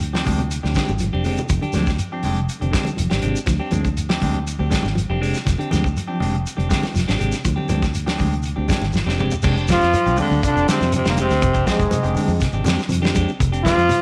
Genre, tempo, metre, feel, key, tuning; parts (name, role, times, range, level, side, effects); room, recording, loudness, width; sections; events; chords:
afrobeat; 121 BPM; 4/4; straight; F dorian; A4 = 438 Hz
fingered electric bass; bass; 0.0-13.9 s; F1 to F2; -25 LUFS; equal
warm soul drum kit; drums; 0.0-14.0 s; crash cymbal, hi-hat, kick drum, snare drum, toms; -26 LUFS; equal
shekere; percussion; 0.0-14.0 s; -31 LUFS; equal
semi-hollow electric guitar; arpeggios; 0.1-14.0 s; C3 to F3; -30 LUFS; equal
clean electric guitar; stabs; 0.1-13.8 s; Ab3 to G4; -28 LUFS; equal; phaser
congas; percussion; 0.1-14.0 s; -32 LUFS; equal
bright trombone; melody; 9.7-14.0 s; Ab3 to F4; -22 LUFS; equal; tape echo
raspy tenor saxophone; second line; 9.7-14.0 s; Ab2 to F3; -28 LUFS; equal
light reverb, small room ambience; -20 LUFS; mono
0.0-9.4 A section; 9.4-14.0 B section
drum fill 1.1-1.5, 8.9-9.4
0.0 Fm69